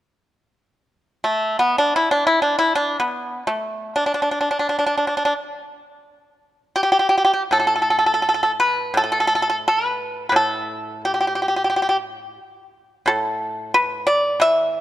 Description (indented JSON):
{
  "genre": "chinese traditional",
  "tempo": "66-90 BPM",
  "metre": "4/4",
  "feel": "rubato",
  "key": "unclear",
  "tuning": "A4 = 436 Hz",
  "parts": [
    { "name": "pipa", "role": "solo", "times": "1.2-14.8 s", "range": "A2 to E5", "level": "-17 LUFS", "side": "equal", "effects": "none" }
  ],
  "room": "moderate concert hall reverb, RT60 2.2 s",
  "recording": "dark, warm production",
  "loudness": "-17 LUFS",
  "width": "side -13 dB against mid",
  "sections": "0.6-7.5 A section; 7.5-14.8 B section",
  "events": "none",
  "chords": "none"
}